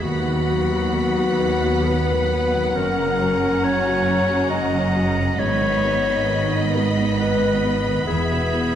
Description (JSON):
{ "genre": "cinematic, emotional film score for orchestra", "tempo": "68 BPM", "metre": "3/4", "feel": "rubato", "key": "B major", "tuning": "A4 = 439 Hz", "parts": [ { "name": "warm symphonic violin section", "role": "melody", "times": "0.0-8.8 s", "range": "A#5 to B5", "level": "-30 LUFS", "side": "left 2 dB", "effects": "none" }, { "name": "clear symphonic violin section", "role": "second line", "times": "0.0-8.8 s", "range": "D#5 to F#5", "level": "-29 LUFS", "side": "left 1 dB", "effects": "none" }, { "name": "warm clarinet", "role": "second line", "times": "0.0-8.8 s", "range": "F#4 to D#5", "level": "-23 LUFS", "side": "left 2 dB", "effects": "none" }, { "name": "felt-muted upright piano", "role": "accompaniment", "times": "0.0-8.8 s", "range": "D#2 to C#5", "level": "-27 LUFS", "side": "equal", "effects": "none" }, { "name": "warm symphonic viola section", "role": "accompaniment", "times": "0.0-8.8 s", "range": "B3 to C#4", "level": "-30 LUFS", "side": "right 2 dB", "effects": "none" }, { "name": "mellow French horn section", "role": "sustained chords", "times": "0.0-8.8 s", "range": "D#3 to C#4", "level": "-29 LUFS", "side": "left 2 dB", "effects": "none" }, { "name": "concert harp", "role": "arpeggios", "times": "0.0-8.8 s", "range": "F#2 to F#4", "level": "-30 LUFS", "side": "left 6 dB", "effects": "none" }, { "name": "clear symphonic cello section", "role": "bass", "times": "0.0-8.8 s", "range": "D#2 to G#2", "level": "-26 LUFS", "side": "right 3 dB", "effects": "none" }, { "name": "rich chamber double bass section", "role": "bass", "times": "0.0-8.8 s", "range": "E1 to D#2", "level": "-27 LUFS", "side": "right 3 dB", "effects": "none" } ], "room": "moderate concert hall reverb, RT60 2.4 s", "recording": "vinyl crackle", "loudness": "-18 LUFS", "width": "side -10 dB against mid", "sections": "0.0-8.8 A section", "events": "none", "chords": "0.0 B/D#; 2.8 F#; 5.4 G#m; 8.1 E" }